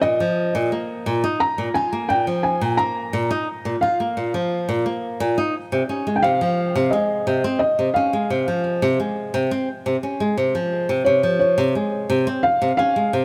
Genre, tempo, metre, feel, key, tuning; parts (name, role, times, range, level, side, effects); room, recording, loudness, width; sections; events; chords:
folktronica; 87 BPM; 4/4; straight; Db lydian; A4 = 440 Hz
felt-muted upright piano; melody; 0.0-13.2 s; Db5 to Bb5; -23 LUFS; equal; tape echo
flamenco guitar; arpeggios; 0.0-13.2 s; Bb2 to F4; -23 LUFS; equal; tape echo
moderate echo chamber reverb, RT60 2.5 s; -21 LUFS; mono
0.0-11.1 A section; 11.1-13.2 B section
0.0 Ebsus2 (rootless); 5.5 Dbmaj7 (rootless); 11.1 Dbmaj7